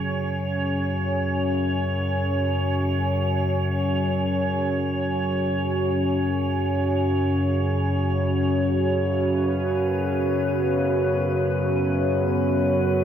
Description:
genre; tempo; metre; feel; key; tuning
dark ambient drone; free time; none; none; unclear; A4 = 443 Hz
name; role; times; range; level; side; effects
deep dark ambient pad; sustained chords; 0.0-13.0 s; B3 to G#5; -27 LUFS; right 2 dB; chorus, built-in reverb
analog drone; drone; 0.0-13.0 s; F#2 to C#3; -23 LUFS; left 1 dB; chorus
icy glass pad; texture; 0.0-13.0 s; B4 to C#5; -30 LUFS; right 2 dB; chorus, built-in reverb
room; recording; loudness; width
wet huge ambient reverb, RT60 7.7 s; none; -21 LUFS; side -9 dB against mid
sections
0.0-13.0 A section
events
none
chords
0.0 F#5

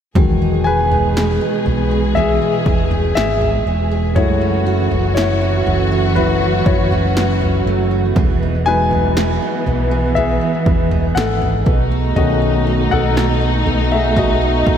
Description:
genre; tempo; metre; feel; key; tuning
pop ballad; 60 BPM; 4/4; straight; E major; A4 = 440 Hz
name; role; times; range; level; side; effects
warm concert grand piano; accompaniment; 0.2-14.8 s; D#3 to G#5; -19 LUFS; left 4 dB; none
warm symphonic string section; sustained chords; 0.2-14.8 s; B2 to G#4; -20 LUFS; equal; none
picked steel-string acoustic guitar; arpeggios; 0.2-14.8 s; F#2 to G#4; -22 LUFS; right 7 dB; wide subtle chorus, tape echo
fingered electric bass; bass; 0.2-14.8 s; E1 to B1; -19 LUFS; equal; none
punchy analog drum machine; drums; 0.2-14.8 s; kick drum, snare drum, toms; -20 LUFS; right 1 dB; none
room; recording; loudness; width
moderate lush hall reverb, RT60 3.0 s; dreamy mix soaked in reverb; -13 LUFS; side -8 dB against mid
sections
0.2-14.8 A section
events
grand piano solo 0.2-14.8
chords
0.2 Emaj7; 4.2 F#m7; 8.2 Emaj7; 11.7 B7

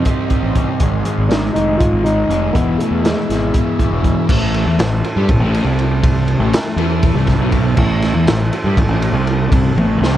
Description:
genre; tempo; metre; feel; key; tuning
psychedelic rock; 241 BPM (eighths); 7/8; straight; A minor from 4.3 s; A4 = 440 Hz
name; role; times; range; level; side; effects
felt-muted upright piano; melody; 0.0-4.0 s; G#3 to F4; -20 LUFS; equal; analog delay
combo organ; sustained chords; 0.0-10.2 s; A3 to E5; -27 LUFS; right 3 dB; none
fuzz guitar; riff; 0.0-10.2 s; E2 to C4; -18 LUFS; equal; distortion, phaser, analog delay
crunchy breakbeat drum kit; drums; 0.1-10.2 s; crash cymbal, hi-hat, kick drum, ride cymbal, snare drum, toms; -18 LUFS; equal; none
fuzz fingered electric bass; bass; 0.4-10.2 s; E1 to G2; -18 LUFS; equal; overdrive
room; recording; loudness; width
light reverb, small room ambience; echo-heavy mix; -13 LUFS; side -12 dB against mid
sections
0.0-4.3 A section; 4.3-10.2 B section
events
drum fill 9.8-10.2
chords
0.0 Cm; 0.8 G#; 2.5 E; 4.3 Am

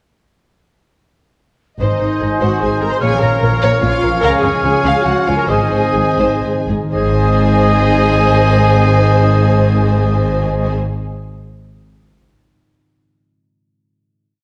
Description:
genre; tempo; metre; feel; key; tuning
cinematic, heroic adventure film score; 118-150 BPM; 3/4; straight; Ab major; A4 = 440 Hz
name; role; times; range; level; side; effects
dark symphonic violin section; melody; 1.8-10.7 s; Ab4 to F5; -24 LUFS; equal; none
bright clarinet; second line; 1.8-10.7 s; C5 to Db5; -28 LUFS; equal; none
large flute ensemble; second line; 1.8-10.7 s; F5 to Ab5; -27 LUFS; equal; none
warm oboe; second line; 1.8-10.7 s; Eb5 to F5; -25 LUFS; equal; none
warm symphonic violin section; second line; 1.8-10.7 s; Eb5 to C6; -28 LUFS; equal; none
warm symphonic viola section; accompaniment; 1.8-10.7 s; Eb4 to C5; -23 LUFS; equal; none
dark French horn section; sustained chords; 1.8-10.7 s; Eb3 to Eb4; -26 LUFS; equal; none
concert harp; arpeggios; 1.8-11.6 s; Ab2 to Eb6; -27 LUFS; equal; none
clear trumpet; stabs; 1.8-10.7 s; C5 to Eb5; -25 LUFS; equal; none
dark symphonic cello section; bass; 1.8-10.7 s; Ab2 to Db3; -20 LUFS; equal; none
rich symphonic double bass section; bass; 1.8-10.7 s; Ab1 to Db2; -22 LUFS; equal; none
room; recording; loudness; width
wet scoring stage reverb, RT60 1.6 s; worn, warbling old tape, cassette tape, warbly pitch drift; -14 LUFS; mono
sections
1.8-6.9 theme; 6.9-10.0 final chord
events
slowing down 3.6-6.9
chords
1.8 Ab; 3.0 Bbm; 4.2 Db; 5.5 Ab

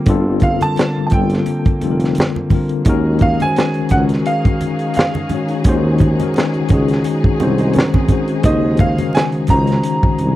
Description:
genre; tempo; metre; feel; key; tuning
R&B, neo-soul; 86 BPM; 4/4; swing 56% on 16ths; unclear; A4 = 440 Hz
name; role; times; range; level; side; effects
tine electric piano; accompaniment; 0.0-10.4 s; Db3 to Db5; -18 LUFS; left 3 dB; medium stereo tremolo
muted studio string section; sustained chords; 0.0-10.4 s; Eb3 to Ab4; -28 LUFS; equal; none
mellow tuba; bass; 0.1-10.4 s; F1 to Eb2; -18 LUFS; right 1 dB; transformer saturation
crunchy breakbeat drum kit; drums; 0.1-10.4 s; hi-hat, kick drum, snare drum; -16 LUFS; right 1 dB; none
congas; percussion; 0.1-10.4 s; none; -26 LUFS; right 4 dB; none
clear grand piano; melody; 0.4-10.4 s; Eb5 to Bb5; -21 LUFS; right 2 dB; none
hollow-body jazz guitar; second line; 7.4-8.9 s; C4 to C5; -24 LUFS; right 6 dB; none
room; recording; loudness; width
little or no reverb; dry, close 1970s-style studio recording; -13 LUFS; side -15 dB against mid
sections
0.0-10.4 A section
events
none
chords
0.0 Gm11; 2.9 Ebm11

